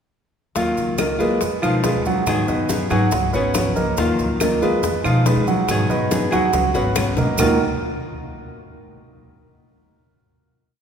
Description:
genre	latin, Cuban son and guajira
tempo	140 BPM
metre	4/4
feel	straight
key	Eb minor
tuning	A4 = 440 Hz
part	nylon-string guitar	accompaniment	0.6-7.6 s	Eb3 to Ab4	-23 LUFS	left 2 dB	none
part	warm concert grand piano	arpeggios	0.6-7.6 s	Eb3 to Gb5	-21 LUFS	right 3 dB	none
part	upright bass	bass	0.6-7.6 s	Ab1 to F3	-24 LUFS	left 1 dB	none
part	bongos	percussion	0.6-7.5 s	none	-29 LUFS	left 6 dB	none
part	congas	percussion	0.6-7.5 s	none	-28 LUFS	equal	none
part	maracas	percussion	0.6-7.5 s	none	-33 LUFS	right 4 dB	none
part	claves	percussion	1.0-7.5 s	none	-34 LUFS	right 2 dB	none
room	wet church reverb, RT60 3.0 s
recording	recorded in a church or concert hall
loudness	-17 LUFS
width	side -7 dB against mid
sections	0.6-7.4 montuno (vamp); 7.4-9.1 final chord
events	drum fill 6.5-7.4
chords	0.6 Ebmadd9; 1.4 Fm7b5; 2.3 Abm7; 3.1 Db7sus4; 4.0 Ebmadd9; 4.8 Fm7b5; 5.7 Abm7; 6.5 Db7sus4; 7.4 Ebmadd9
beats	| 0.56 0.99 1.41 1.84 | 2.27 2.69 3.12 3.55 | 3.98 4.41 4.83 5.26 | 5.69 6.11 6.54 6.97 | 7.39

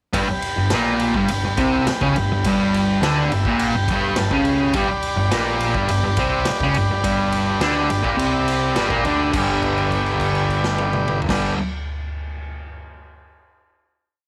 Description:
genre	garage rock duo or trio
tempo	104 BPM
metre	4/4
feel	straight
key	G major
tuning	A4 = 440 Hz
part	fuzz guitar	riff	0.1-11.6 s	G2 to D4	-22 LUFS	equal	distortion
part	growling picked electric bass	bass	0.1-11.5 s	G1 to D2	-30 LUFS	equal	overdrive
part	raw garage drum kit	drums	0.1-11.4 s	crash cymbal, kick drum, ride cymbal, snare drum, toms	-28 LUFS	equal	none
part	overdriven combo organ	sustained chords	0.2-11.5 s	G4 to B5	-27 LUFS	equal	none
room	light reverb, small room reverb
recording	none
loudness	-20 LUFS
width	mono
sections	0.1-9.3 verse; 9.3-11.6 final chord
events	transistor combo organ fill 3.0-4.7; held note 9.3-11.3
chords	0.1 G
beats	| 0.13 0.71 1.29 1.87 | 2.44 3.02 3.60 4.17 | 4.75 5.32 5.89 6.47 | 7.04 7.62 8.19 8.77 | 9.34 9.91 10.49 11.07

